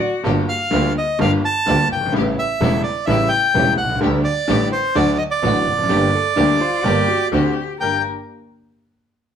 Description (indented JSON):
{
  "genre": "tango",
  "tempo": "127 BPM",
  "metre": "4/4",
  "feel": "rubato",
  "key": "G minor",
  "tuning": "A4 = 440 Hz",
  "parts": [
    { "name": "dark cello", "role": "second line", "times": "0.0-0.3, 6.4-8.0 s", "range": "D4 to Bb4", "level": "-24 LUFS", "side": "left 7 dB", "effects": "none" },
    { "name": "hollow-body jazz guitar", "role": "second line", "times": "0.0-0.3, 5.9-8.0 s", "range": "F#4 to D5", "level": "-27 LUFS", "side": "right 5 dB", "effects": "none" },
    { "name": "clear grand piano", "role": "accompaniment", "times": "0.2-8.0 s", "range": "E1 to G4", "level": "-21 LUFS", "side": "left 2 dB", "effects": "none" },
    { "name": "warm chamber string section", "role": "stabs", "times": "0.2-8.0 s", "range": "A3 to G4", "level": "-27 LUFS", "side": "equal", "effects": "none" },
    { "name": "clear double bass", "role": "bass", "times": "0.3-8.0 s", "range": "E1 to D2", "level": "-22 LUFS", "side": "right 2 dB", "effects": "none" },
    { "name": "bandoneon", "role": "melody", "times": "0.5-8.0 s", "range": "C5 to A5", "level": "-19 LUFS", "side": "right 1 dB", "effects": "none" }
  ],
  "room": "moderate studio reverb, RT60 0.8 s",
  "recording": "none",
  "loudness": "-15 LUFS",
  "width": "side -8 dB against mid",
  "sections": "0.0-7.8 A section; 7.8-9.4 B section",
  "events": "none",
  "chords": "0.3 Gm7; 2.1 A7; 4.0 Dsus4; 5.0 D; 5.9 Gm; 7.3 D7; 7.8 Gm",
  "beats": "| 0.25 0.73 1.20 1.68 | 2.15 2.61 3.08 3.55 | 4.02 4.49 4.96 5.43 | 5.90 6.37 6.84 7.32 | 7.80"
}